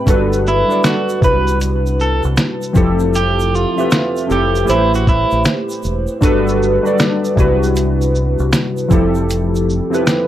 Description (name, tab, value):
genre	lo-fi hip hop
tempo	78 BPM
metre	4/4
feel	swing 64% on 16ths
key	unclear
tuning	A4 = 444 Hz
part	warbly lo-fi synth keys	accompaniment	0.0-10.3 s	C3 to E5	-16 LUFS	equal	chorus, low-pass filter
part	deep dub fingered electric bass	bass	0.1-9.8 s	E1 to C2	-18 LUFS	equal	none
part	lo-fi sampler-style drum kit	drums	0.1-10.3 s	finger snaps, hi-hat, kick drum, shaker, snare drum	-16 LUFS	equal	none
part	egg shaker	percussion	0.1-10.3 s	none	-37 LUFS	right 6 dB	none
part	electric guitar at the edge of break-up	melody	0.5-5.4 s	E4 to B4	-19 LUFS	right 2 dB	spring reverb, low-pass filter
room	light reverb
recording	none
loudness	-13 LUFS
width	side -12 dB against mid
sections	0.0-10.3 A section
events	none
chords	0.1 Gmaj9; 1.2 Cmaj9#11; 2.8 Fmaj9; 4.7 Am9; 6.2 Gmaj9; 7.4 Cmaj9#11; 8.9 Fmaj9